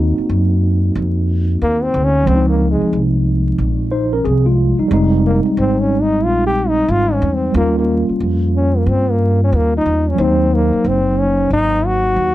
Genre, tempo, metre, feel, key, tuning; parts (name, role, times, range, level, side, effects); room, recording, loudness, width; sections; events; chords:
hip hop, jazz-hop; 91 BPM; 4/4; swing 65% on 16ths; F minor; A4 = 440 Hz
mellow tine electric piano; accompaniment; 0.0-12.3 s; F3 to C5; -18 LUFS; right 1 dB; medium stereo tremolo
upright bass; bass; 0.0-12.3 s; F1 to G2; -17 LUFS; equal
mellow trombone; melody; 1.6-12.3 s; Ab3 to G4; -17 LUFS; left 1 dB
light reverb; dry, gritty hardware recording, vinyl crackle; -13 LUFS; side -15 dB against mid
0.0-12.3 A section
trombone solo 0.0-12.3
0.0 D7b9b13; 2.3 Dbmaj9; 4.9 Fm9; 7.5 Eb9; 10.2 Ab9